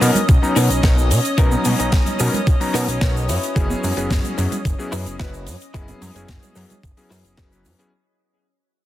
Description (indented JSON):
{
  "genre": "nu-disco, nu disco",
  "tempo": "110 BPM",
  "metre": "4/4",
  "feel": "straight",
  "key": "unclear",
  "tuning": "A4 = 440 Hz",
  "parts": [
    { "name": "warm electric grand piano", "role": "accompaniment", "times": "0.0-7.9 s", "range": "F#3 to A#5", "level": "-24 LUFS", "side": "left 2 dB", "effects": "sidechain pumping, digital delay" },
    { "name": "lush unison pad", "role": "sustained chords", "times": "0.0-7.9 s", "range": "C#4 to D#5", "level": "-26 LUFS", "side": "equal", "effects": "chorus, sidechain pumping" },
    { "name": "direct-recorded clean electric guitar", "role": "riff", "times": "0.0-7.7 s", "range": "D#4 to D#5", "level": "-27 LUFS", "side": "left 2 dB", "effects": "wide subtle chorus, digital delay" },
    { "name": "fat analog bass", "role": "bass", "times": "0.0-7.7 s", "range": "F#1 to B2", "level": "-21 LUFS", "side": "equal", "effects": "sidechain pumping" },
    { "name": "tight funk drum kit", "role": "drums", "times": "0.0-7.9 s", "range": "hi-hat, shaker, snare drum", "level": "-26 LUFS", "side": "left 1 dB", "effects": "studio reverb" },
    { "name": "congas", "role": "percussion", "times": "0.2-6.8 s", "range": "none", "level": "-27 LUFS", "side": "right 4 dB", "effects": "none" },
    { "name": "electronic kick drum", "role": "drums", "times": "0.3-7.5 s", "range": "none", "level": "-17 LUFS", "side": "equal", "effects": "overdrive, studio reverb" }
  ],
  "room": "small room ambience",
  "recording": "dense, heavily limited modern master",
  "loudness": "-16 LUFS",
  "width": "side -14 dB against mid",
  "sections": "0.0-7.9 A section",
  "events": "drop 0.0-7.9; fade-out 0.0-7.9",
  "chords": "0.0 Bmaj9; 3.3 F#7sus4"
}